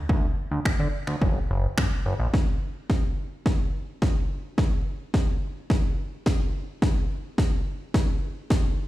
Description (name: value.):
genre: dance-pop.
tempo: 107 BPM.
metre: 4/4.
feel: straight.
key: unclear.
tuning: A4 = 439 Hz.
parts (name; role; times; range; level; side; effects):
chorused synth bass; bass; 0.1-2.3 s; F#1 to D3; -25 LUFS; equal; sidechain pumping.
house drum kit; drums; 0.1-8.6 s; finger snaps, kick drum, snare drum; -23 LUFS; equal; overdrive.
room: little or no reverb.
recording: played on a big sound system in a bare room, stone room reverb.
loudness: -23 LUFS.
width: side -16 dB against mid.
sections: 0.0-2.3 A section; 2.3-8.9 B section.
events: build-up 2.3-8.9; drum fill 2.3-8.9.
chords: none.